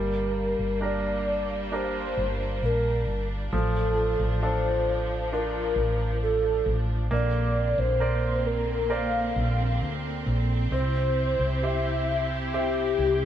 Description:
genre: pop.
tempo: 67 BPM.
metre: 4/4.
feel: straight.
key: unclear.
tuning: A4 = 440 Hz.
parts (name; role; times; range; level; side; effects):
warm velvety synth lead; melody; 0.0-13.3 s; G4 to F5; -28 LUFS; left 1 dB; chorus.
bright grand piano; accompaniment; 0.0-13.3 s; F3 to E5; -32 LUFS; right 1 dB; none.
rich studio string section; sustained chords; 0.0-13.3 s; C3 to G4; -34 LUFS; right 2 dB; none.
woody fretless electric bass; bass; 0.0-13.3 s; G1 to D2; -28 LUFS; equal; none.
room: light reverb.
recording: band playing live in one room.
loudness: -24 LUFS.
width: side -10 dB against mid.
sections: 0.0-13.3 A section.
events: none.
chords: 0.0 Gm; 3.5 Dm/A; 7.1 Bbadd9; 10.7 C.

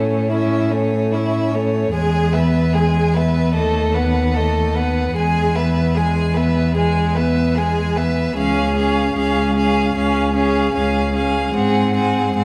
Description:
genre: classical, slow romantic movement for string quartet.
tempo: 75 BPM.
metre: 4/4.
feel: rubato.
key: Db major from 8.4 s.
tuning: A4 = 440 Hz.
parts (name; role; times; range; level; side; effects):
rich violin; melody; 0.0-12.4 s; C#5 to G#5; -28 LUFS; equal; none.
rich violin; second line; 0.0-12.4 s; C#4 to B4; -24 LUFS; equal; none.
rich viola; accompaniment; 0.0-12.4 s; G#3 to Db4; -24 LUFS; equal; none.
rich cello; bass; 0.0-12.4 s; Db2 to A2; -21 LUFS; equal; none.
room: wet recital hall reverb, RT60 1.5 s.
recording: none.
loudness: -18 LUFS.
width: mono.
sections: 0.0-12.4 A section.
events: none.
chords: 0.0 A; 1.9 E; 3.6 B7/D#; 5.2 E; 8.4 Db; 11.6 Ab7.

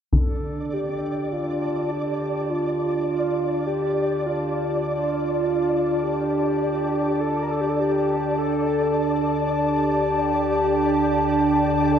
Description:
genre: ambient.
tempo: 51 BPM.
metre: 4/4.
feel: straight.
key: D minor.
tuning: A4 = 440 Hz.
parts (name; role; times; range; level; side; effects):
mellow horn-like synth lead; melody; 0.1-12.0 s; F4 to Bb4; -25 LUFS; equal; lush chorus, tape echo.
dark analog pad; sustained chords; 0.1-12.0 s; D4 to A5; -24 LUFS; right 2 dB; chorus.
deep rumbling drone; drone; 1.4-12.0 s; D2 to D3; -34 LUFS; left 5 dB; built-in reverb, phaser.
flickering grainy texture; texture; 0.5-12.0 s; D5; -29 LUFS; left 1 dB; built-in reverb.
room: wet huge ambient reverb, RT60 8.0 s.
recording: none.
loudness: -20 LUFS.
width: side -8 dB against mid.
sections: 0.1-12.0 A section.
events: fade-in on synth drone 0.1-12.0.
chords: 0.1 D5.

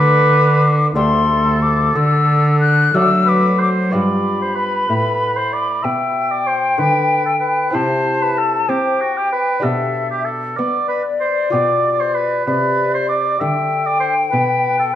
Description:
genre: classical, baroque-style sonata movement with continuo.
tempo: 63 BPM (dotted quarters).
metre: 12/8.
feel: straight.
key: G major.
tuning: A4 = 443 Hz.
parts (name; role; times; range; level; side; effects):
hollow concert flute; melody; 0.0-15.0 s; D5 to F#6; -18 LUFS; left 4 dB; none.
warm oboe; second line; 0.0-14.9 s; F#4 to E5; -20 LUFS; right 3 dB; none.
lute; accompaniment; 0.0-15.0 s; D2 to G4; -24 LUFS; left 1 dB; none.
rich cello; bass; 0.0-15.0 s; D2 to C4; -19 LUFS; right 1 dB; none.
room: moderate recital hall reverb, RT60 1.5 s.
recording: dark, warm production.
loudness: -14 LUFS.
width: side -11 dB against mid.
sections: 0.0-3.9 A section; 3.9-15.0 B section.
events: none.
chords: 0.0 Dsus4; 2.0 D; 3.9 G7; 7.7 C; 9.6 G/B; 11.5 G7/B.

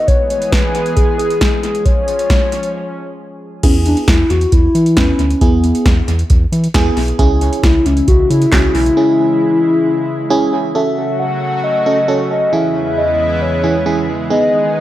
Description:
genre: synth-pop.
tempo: 135 BPM.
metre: 4/4.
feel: straight.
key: F# dorian from 10.7 s.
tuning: A4 = 440 Hz.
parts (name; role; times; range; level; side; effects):
hollow clarinet-like synth lead; melody; 0.0-14.8 s; B3 to F#5; -15 LUFS; left 2 dB; chorus, analog delay.
lush unison pad; sustained chords; 0.0-3.6, 7.2-14.8 s; E2 to G#4; -21 LUFS; equal; chorus.
electro analog drum machine; drums; 0.1-9.0 s; crash cymbal, handclaps, hi-hat, kick drum, snare drum; -14 LUFS; equal; overdrive, analog delay.
FM electric piano; accompaniment; 3.6-14.8 s; E3 to B4; -18 LUFS; right 3 dB; chorus, analog delay.
round analog bass; bass; 3.6-8.9 s; B1 to E3; -16 LUFS; equal; none.
room: light reverb, digital ambience.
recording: echo-heavy mix.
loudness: -11 LUFS.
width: side -14 dB against mid.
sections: 0.0-3.6 A section; 3.6-10.7 B section; 10.7-14.8 C section.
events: break 2.7-3.6.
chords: 0.1 E; 1.6 C#; 3.6 E; 7.2 C#m; 10.7 F#m; 12.5 C#m7/E; 14.3 G#m.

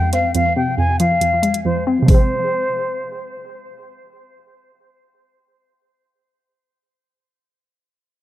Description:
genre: hip hop, drill.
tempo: 138 BPM.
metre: 4/4.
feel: half-time.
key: F minor.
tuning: A4 = 435 Hz.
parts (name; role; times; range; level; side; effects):
concert flute; melody; 0.0-3.3 s; C5 to Ab5; -20 LUFS; left 1 dB; low-pass filter, tape echo.
warbly dusty pluck; accompaniment; 0.0-6.4 s; F2 to C4; -18 LUFS; right 1 dB; chorus, low-pass filter, tape echo.
drill drum kit; drums; 0.1-2.2 s; hi-hat, kick drum; -15 LUFS; equal; overdrive.
room: light reverb.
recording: echo-heavy mix.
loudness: -15 LUFS.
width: side -14 dB against mid.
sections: 0.0-2.1 A section; 2.1-5.6 B section.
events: filter sweep 0.0-2.1; drums muted 1.6-2.1.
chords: 0.0 Fm.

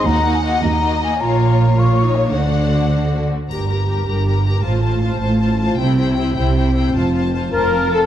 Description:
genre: cinematic, heroic adventure film score.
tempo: 104 BPM (dotted quarters).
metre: 6/8.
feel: straight.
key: G dorian from 3.5 s.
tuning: A4 = 440 Hz.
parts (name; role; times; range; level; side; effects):
warm symphonic violin section; melody; 0.0-8.1 s; A4 to Bb5; -26 LUFS; left 7 dB; none.
mellow hollow concert flute; second line; 0.0-3.3, 7.5-8.1 s; Db5 to Db6; -22 LUFS; left 3 dB; none.
warm symphonic violin section; second line; 0.0-8.1 s; F4 to Eb5; -28 LUFS; left 4 dB; none.
warm studio viola section; accompaniment; 0.0-8.1 s; A3 to G4; -24 LUFS; right 1 dB; none.
dark symphonic cello section; bass; 0.1-8.0 s; Eb2 to D3; -19 LUFS; right 1 dB; none.
rich studio double bass section; bass; 0.1-8.0 s; F1 to Eb2; -20 LUFS; right 2 dB; none.
triangle; percussion; 3.5-4.2 s; none; -46 LUFS; left 6 dB; none.
clear oboe; second line; 7.5-8.1 s; F4; -23 LUFS; left 1 dB; none.
warm French horn section; sustained chords; 7.5-8.0 s; A4 to Bb4; -18 LUFS; left 5 dB; none.
clear trumpet; stabs; 7.5-8.1 s; A4 to Bb4; -20 LUFS; right 2 dB; none.
room: moderate scoring stage reverb, RT60 1.8 s.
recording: dark, warm production.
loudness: -14 LUFS.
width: side -11 dB against mid.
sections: 0.0-3.5 A section; 3.5-8.1 B section.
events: none.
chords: 0.1 Ebm; 1.2 Bbm; 2.4 D7; 3.5 Gm; 4.7 F/A; 5.8 C; 6.9 F.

